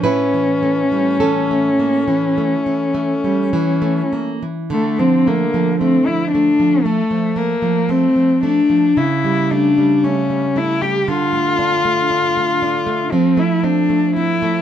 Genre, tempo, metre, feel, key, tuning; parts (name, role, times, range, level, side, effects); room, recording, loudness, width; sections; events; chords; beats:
romantic duo for cello and classical guitar; 50-59 BPM; 4/4; rubato; D minor; A4 = 441 Hz
rich cello; melody; 0.0-14.6 s; A3 to G4; -16 LUFS; left 2 dB
nylon-string guitar; accompaniment; 0.0-14.6 s; A2 to B4; -19 LUFS; right 4 dB
light reverb; dark, warm production; -14 LUFS; side -10 dB against mid
0.0-4.7 A section; 4.7-14.6 B section
0.1 A; 4.7 Dm; 9.0 A7/C#; 11.1 Dm; 13.1 F
| 0.06 1.24 2.40 3.56 | 4.72 5.82 6.85 7.90 | 8.98 10.04 11.08 12.10 | 13.11 14.15